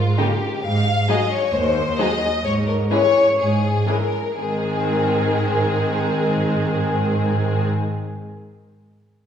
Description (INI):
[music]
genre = quick classical-period movement for symphony orchestra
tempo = 116-136 BPM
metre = 4/4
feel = rubato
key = Ab major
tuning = A4 = 440 Hz
[part]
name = rich chamber violin section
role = melody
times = 0.0-7.7 s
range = F4 to F5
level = -22 LUFS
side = left 4 dB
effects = none
[part]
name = clear studio cello section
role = bass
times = 0.0-7.7 s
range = Eb2 to Ab2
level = -22 LUFS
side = right 2 dB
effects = none
[part]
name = rich studio violin section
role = second line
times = 0.2-7.7 s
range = C4 to Ab4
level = -27 LUFS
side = left 2 dB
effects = none
[part]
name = rich studio viola section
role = accompaniment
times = 0.2-7.7 s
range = Db3 to Bb3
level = -24 LUFS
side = right 1 dB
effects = none
[sound]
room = wet recital hall reverb, RT60 1.7 s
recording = recorded in a church or concert hall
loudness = -17 LUFS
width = side -8 dB against mid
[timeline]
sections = 0.0-4.4 A section; 4.4-8.3 B section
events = slowing down 0.0-4.4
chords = 0.0 Eb7/Ab (rootless); 0.6 Ab7; 2.4 Db5/Ab; 4.4 Ab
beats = 0.19 | 0.64 1.08 1.53 1.98 | 2.44 2.91 3.38 3.87 | 4.38 4.87 5.36 5.86 | 6.35 6.84 7.33